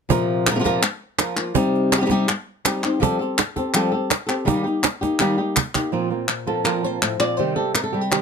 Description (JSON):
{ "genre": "flamenco", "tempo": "165 BPM", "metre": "4/4", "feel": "straight", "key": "unclear", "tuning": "A4 = 440 Hz", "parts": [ { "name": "flamenco guitar", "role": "melody", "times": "0.1-8.2 s", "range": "A2 to D5", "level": "-20 LUFS", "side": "left 1 dB", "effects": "none" }, { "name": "cajon", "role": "percussion", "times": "0.1-5.8 s", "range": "none", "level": "-22 LUFS", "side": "right 9 dB", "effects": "none" }, { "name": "palmas hand claps", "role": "percussion", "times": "0.5-8.2 s", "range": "none", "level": "-21 LUFS", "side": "left 1 dB", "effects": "none" }, { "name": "flamenco guitar", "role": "stabs", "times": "5.9-8.2 s", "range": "Bb2 to G4", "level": "-24 LUFS", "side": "right 8 dB", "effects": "none" } ], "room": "light reverb", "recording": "close, detailed microphones", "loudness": "-19 LUFS", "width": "side -6 dB against mid", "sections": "0.1-5.9 A section; 5.9-8.2 B section", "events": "drum fill 5.2-5.9", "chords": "0.1 Bbsus2; 1.6 Cm; 3.0 Fadd9; 4.5 Eb; 5.9 Bbsus2; 7.4 Cm", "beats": "| 0.11 0.47 0.84 1.20 | 1.56 1.93 2.29 2.66 | 3.02 3.39 3.75 4.11 | 4.48 4.84 5.21 5.57 | 5.93 6.30 6.67 7.03 | 7.40 7.76 8.13" }